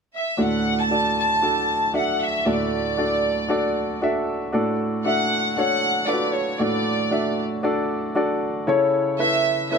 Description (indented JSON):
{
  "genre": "pop",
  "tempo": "116 BPM",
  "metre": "4/4",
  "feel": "swing 56% on 16ths",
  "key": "D major",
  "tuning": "A4 = 440 Hz",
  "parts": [
    { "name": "warm studio violin section", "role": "melody", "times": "0.1-9.8 s", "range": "C#5 to A5", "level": "-22 LUFS", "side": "right 1 dB", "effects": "none" },
    { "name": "warm grand piano", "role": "accompaniment", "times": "0.4-9.8 s", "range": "D2 to E5", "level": "-22 LUFS", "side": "equal", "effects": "none" }
  ],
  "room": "light reverb",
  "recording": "none",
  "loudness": "-20 LUFS",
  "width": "side -5 dB against mid",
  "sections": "0.4-4.5 A section; 4.5-9.8 B section",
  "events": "none",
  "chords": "0.4 D; 8.7 A/C#",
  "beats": "| 0.39 0.91 1.42 1.94 | 2.46 2.98 3.50 4.01 | 4.53 5.05 5.57 6.08 | 6.60 7.12 7.64 8.16 | 8.67 9.19 9.71"
}